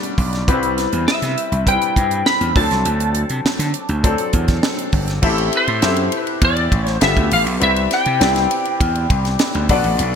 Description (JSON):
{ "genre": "polished 1980s jazz-funk pop", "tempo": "101 BPM", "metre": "4/4", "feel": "straight", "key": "unclear", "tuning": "A4 = 440 Hz", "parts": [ { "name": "bright baby grand piano", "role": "accompaniment", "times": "0.0-10.2 s", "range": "F#3 to E5", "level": "-21 LUFS", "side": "left 4 dB", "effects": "lush chorus" }, { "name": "tight funk drum kit", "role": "drums", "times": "0.0-10.1 s", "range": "crash cymbal, hi-hat, kick drum, ride cymbal, snare drum", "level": "-20 LUFS", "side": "right 1 dB", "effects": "gated reverb" }, { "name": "gritty slap bass", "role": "bass", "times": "0.2-10.2 s", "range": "G1 to D3", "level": "-20 LUFS", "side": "right 1 dB", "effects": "overdrive" }, { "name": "lightly driven lead guitar", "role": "melody", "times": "1.1-9.7 s", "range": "C5 to B5", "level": "-20 LUFS", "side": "equal", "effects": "analog chorus" } ], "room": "light reverb", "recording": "bright 1980s-style digital production", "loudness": "-15 LUFS", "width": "side -7 dB against mid", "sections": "0.0-5.2 A section; 5.2-10.2 B section", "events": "none", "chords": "0.5 Cmaj7; 2.6 D7; 5.2 Am7; 7.0 G13; 7.6 Cmaj9" }